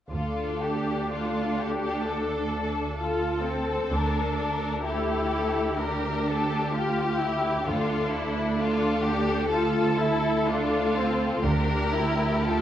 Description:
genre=classical, slow romantic movement for string orchestra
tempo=64 BPM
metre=4/4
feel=uneven beats, rubato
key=D minor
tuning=A4 = 439 Hz
part: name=rich symphonic violin section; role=melody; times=0.1-12.6 s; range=G4 to Bb4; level=-32 LUFS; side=left 3 dB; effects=none
part: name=rich studio violin section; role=second line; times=0.1-12.6 s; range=E4 to Bb4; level=-30 LUFS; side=left 3 dB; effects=none
part: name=rich symphonic viola section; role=accompaniment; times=0.1-12.6 s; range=C4 to F4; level=-29 LUFS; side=equal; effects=none
part: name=clear symphonic double bass section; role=bass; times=0.1-12.4 s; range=D2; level=-30 LUFS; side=right 1 dB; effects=none
part: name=rich symphonic cello section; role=bass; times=0.1-12.6 s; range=D2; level=-29 LUFS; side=right 3 dB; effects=none
room=wet scoring stage reverb, RT60 1.9 s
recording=worn, warbling old tape, cassette tape, warbly pitch drift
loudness=-24 LUFS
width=side -11 dB against mid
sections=0.1-12.6 A section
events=none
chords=0.1 Dm; 3.9 Gm/D; 7.7 Dm; 11.4 Gm/D

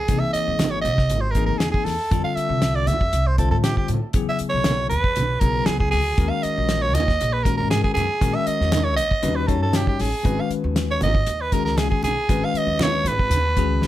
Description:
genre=electric jazz fusion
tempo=118 BPM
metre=4/4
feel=swing 53% on 16ths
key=unclear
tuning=A4 = 442 Hz
part: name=growling soprano saxophone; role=melody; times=0.0-13.9 s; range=G4 to F5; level=-23 LUFS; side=right 2 dB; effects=none
part: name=bell-like tine electric piano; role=accompaniment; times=0.1-13.9 s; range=C#3 to C#5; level=-26 LUFS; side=left 7 dB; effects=medium stereo tremolo
part: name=upright bass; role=bass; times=0.1-13.9 s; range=G#1 to A2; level=-24 LUFS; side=equal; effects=none
part: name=damped 70s drum kit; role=drums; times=0.1-13.9 s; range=hi-hat, kick drum, snare drum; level=-23 LUFS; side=equal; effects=none
part: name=congas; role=percussion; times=0.1-13.9 s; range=none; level=-30 LUFS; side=right 3 dB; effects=none
room=light reverb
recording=none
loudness=-18 LUFS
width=side -14 dB against mid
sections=0.0-13.9 A section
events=none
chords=0.1 C7alt; 2.1 Fadd9; 4.1 E69; 6.2 D#m7; 8.2 A#m7b5; 9.2 D#7alt; 10.2 G#m11

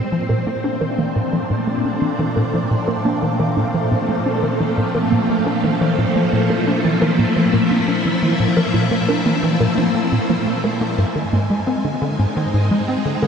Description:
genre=ambient, sequencer-driven space music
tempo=87 BPM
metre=4/4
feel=straight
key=Bb lydian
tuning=A4 = 440 Hz
part: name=phased string machine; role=sustained chords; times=0.0-13.3 s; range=Bb2 to E4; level=-19 LUFS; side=equal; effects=ensemble chorus, phaser
part: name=warbly dusty pluck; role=arpeggios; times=0.0-13.3 s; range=F3 to Bb4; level=-26 LUFS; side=right 2 dB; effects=none
part: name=tight sequencer bass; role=riff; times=0.1-13.3 s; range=Ab2 to D4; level=-20 LUFS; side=equal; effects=ensemble chorus, tape echo
room=wet shimmer reverb, RT60 8.2 s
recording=dark, warm production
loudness=-16 LUFS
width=side -6 dB against mid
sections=0.0-13.3 A section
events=none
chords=0.0 Bbmaj7; 11.0 Ab

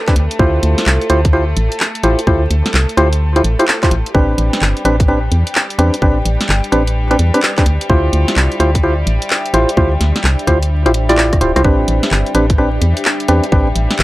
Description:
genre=UK garage, two-step garage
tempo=128 BPM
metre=4/4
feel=swing 64% on 16ths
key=unclear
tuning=A4 = 444 Hz
part: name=warm studio violin section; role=sustained chords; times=0.0-14.0 s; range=G3 to A4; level=-24 LUFS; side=left 1 dB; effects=vintage 12-bit sampler grit, sidechain pumping
part: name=percussive organ stab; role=stabs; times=0.1-13.7 s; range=C4 to D5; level=-16 LUFS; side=equal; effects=chorus, tape echo
part: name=electronic kick drum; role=drums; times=0.1-13.6 s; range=none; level=-14 LUFS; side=equal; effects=none
part: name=garage drum kit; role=drums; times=0.1-14.0 s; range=handclaps, hi-hat, rim click, snare drum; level=-17 LUFS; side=equal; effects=none
part: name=organ-like FM bass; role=bass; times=0.2-14.0 s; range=D1 to E2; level=-14 LUFS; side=equal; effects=tube saturation, sidechain pumping
part: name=deep dark ambient pad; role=texture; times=5.7-14.0 s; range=D4 to E5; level=-28 LUFS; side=left 1 dB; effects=chorus, built-in reverb, sidechain pumping
room=digital ambience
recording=dry, gritty hardware recording, vinyl crackle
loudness=-11 LUFS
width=side -17 dB against mid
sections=0.0-14.0 A section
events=fade-in on ambient pad 0.0-14.0; drum fill 11.2-11.6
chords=0.2 Dm11; 4.1 Am11; 7.7 Dm11; 11.6 Am11

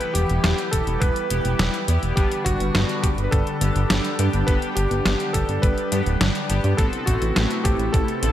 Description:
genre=synthwave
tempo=104 BPM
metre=4/4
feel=straight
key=G major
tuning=A4 = 440 Hz
part: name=clear electric grand piano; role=melody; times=0.0-8.3 s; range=F#4 to B4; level=-27 LUFS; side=equal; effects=digital delay
part: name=lush unison pad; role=sustained chords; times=0.0-8.3 s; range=C3 to B4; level=-28 LUFS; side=right 1 dB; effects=chorus, phaser, sidechain pumping
part: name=chorused polysynth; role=stabs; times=0.0-8.3 s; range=G3 to A4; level=-29 LUFS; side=left 3 dB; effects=tremolo, digital delay
part: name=detuned 8-bit digital drum machine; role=drums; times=0.0-8.3 s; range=hi-hat, snare drum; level=-26 LUFS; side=left 1 dB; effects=overdrive
part: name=chorused synth bass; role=bass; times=0.1-8.3 s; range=D1 to G2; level=-22 LUFS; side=equal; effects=sidechain pumping
part: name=electronic kick drum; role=drums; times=0.7-8.1 s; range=none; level=-22 LUFS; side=equal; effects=overdrive
room=moderate lush hall reverb, RT60 1.8 s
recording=bright 1980s-style digital production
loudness=-19 LUFS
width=side -12 dB against mid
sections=0.0-8.3 A section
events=none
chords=0.0 Em; 2.2 G; 6.8 Amadd9

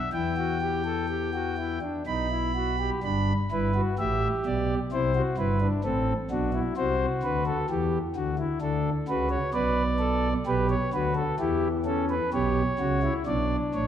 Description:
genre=classical, baroque-style 3-part fugue for pipe organ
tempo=64 BPM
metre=3/4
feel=straight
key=E minor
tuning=A4 = 441 Hz
part: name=pipe organ, principal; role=solo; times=0.0-13.9 s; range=G1 to B5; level=-24 LUFS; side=equal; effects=none
room=wet scoring stage reverb, RT60 1.8 s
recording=none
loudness=-24 LUFS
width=side -9 dB against mid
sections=0.0-3.0 A section; 3.0-13.9 B section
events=none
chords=0.0 Em; 2.1 B; 3.0 Em/G; 4.9 C; 5.9 F#dim/A; 7.7 Em; 8.6 Bm; 10.5 G/B; 11.4 C#m7b5/E; 13.3 Bm

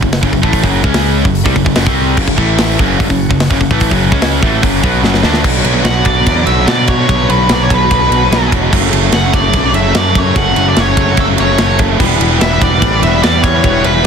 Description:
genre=heavy metal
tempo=147 BPM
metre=4/4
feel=straight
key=F# phrygian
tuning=A4 = 440 Hz
part: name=pipe organ, plenum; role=sustained chords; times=0.0-14.1 s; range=C#3 to A5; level=-24 LUFS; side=right 2 dB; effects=none
part: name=distorted electric guitar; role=riff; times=0.0-14.1 s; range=F#2 to D4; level=-16 LUFS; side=left 13 dB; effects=distortion
part: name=heavy high-gain guitar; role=riff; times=0.0-14.1 s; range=F#2 to D4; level=-16 LUFS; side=right 14 dB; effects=distortion
part: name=modern bright picked electric bass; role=bass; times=0.0-14.0 s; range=E1 to B2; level=-16 LUFS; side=equal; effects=none
part: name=tight metal drum kit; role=drums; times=0.0-14.1 s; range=crash cymbal, hi-hat, kick drum, ride cymbal, snare drum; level=-15 LUFS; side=equal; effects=soft clipping on kick
part: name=nasal lead guitar with a parked wah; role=melody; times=5.8-14.1 s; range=A4 to F#5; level=-15 LUFS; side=equal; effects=overdrive
room=small room ambience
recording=dense, heavily limited modern master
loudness=-9 LUFS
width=side -6 dB against mid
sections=0.0-5.4 A section; 5.4-14.1 B section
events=drum fill 5.0-5.4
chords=0.0 F#m; 0.8 C#5; 1.2 F#m; 2.4 A5; 2.8 F#m; 5.4 Bm; 8.7 F#m; 12.0 Em

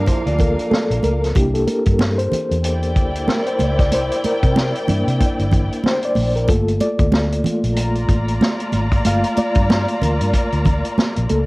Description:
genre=lush 1970s-style soul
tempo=94 BPM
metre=4/4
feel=swing 58% on 16ths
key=G dorian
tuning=A4 = 440 Hz
part: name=warm studio string section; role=second line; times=0.0-11.5 s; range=D4 to Bb5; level=-26 LUFS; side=equal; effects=cassette tape
part: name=mellow reed electric piano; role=accompaniment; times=0.0-11.5 s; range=F3 to F5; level=-21 LUFS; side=left 1 dB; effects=fast tremolo, cassette tape
part: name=electric guitar through a small old amp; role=riff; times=0.0-1.2 s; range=E4 to D5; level=-24 LUFS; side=right 3 dB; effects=cassette tape
part: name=vintage muted fingered electric bass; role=bass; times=0.0-11.5 s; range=G1 to C3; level=-20 LUFS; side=equal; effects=none
part: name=vintage drum kit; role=drums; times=0.1-11.5 s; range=hi-hat, kick drum, snare drum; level=-20 LUFS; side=equal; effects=none
part: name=congas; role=percussion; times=0.1-11.5 s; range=none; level=-22 LUFS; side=right 3 dB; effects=none
room=studio reverb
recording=home recording on cassette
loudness=-15 LUFS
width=side -22 dB against mid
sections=0.0-11.5 A section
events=reed electric piano solo 0.0-11.5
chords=0.0 Gm9; 1.4 C9; 6.5 Gm9

